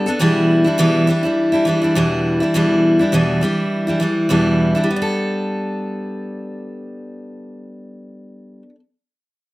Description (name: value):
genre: pop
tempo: 102 BPM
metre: 4/4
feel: swing 55% on 16ths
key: G major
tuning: A4 = 440 Hz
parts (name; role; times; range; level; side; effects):
- picked steel-string acoustic guitar; accompaniment; 0.0-8.8 s; E2 to A4; -16 LUFS; equal; none
room: light reverb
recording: recorded outdoors, with no room sound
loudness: -15 LUFS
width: side -19 dB against mid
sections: 0.0-4.9 A section; 4.9-7.2 B section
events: none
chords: 0.2 Em7; 4.9 Gadd9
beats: | 0.21 0.79 1.38 1.96 | 2.55 3.13 3.72 4.30 | 4.89 5.47 6.06 6.64